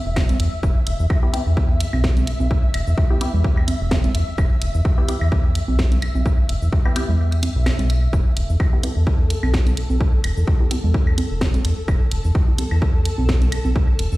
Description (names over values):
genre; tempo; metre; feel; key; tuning
minimal techno; 128 BPM; 4/4; swing 55% on 16ths; E minor; A4 = 440 Hz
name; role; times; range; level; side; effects
flickering grainy texture; texture; 0.0-14.2 s; A4 to E5; -32 LUFS; left 2 dB; built-in reverb, sidechain pumping
round analog bass; bass; 0.1-14.2 s; E1 to E2; -19 LUFS; equal; sidechain pumping
electronic kick drum; drums; 0.2-13.9 s; none; -18 LUFS; equal; overdrive
house drum kit; drums; 0.2-14.2 s; cabasa, hi-hat, snare drum; -28 LUFS; equal; overdrive
claves and congas; percussion; 0.2-13.7 s; none; -29 LUFS; right 3 dB; tape echo
filtered dub chord stab; stabs; 1.2-12.7 s; B3 to G4; -31 LUFS; left 2 dB; phaser, tape echo
room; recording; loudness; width
little or no reverb; played on a big sound system in a bare room, stone room reverb; -17 LUFS; side -18 dB against mid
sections
0.0-14.2 A section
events
kick drops out 7.2-8.1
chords
0.0 Em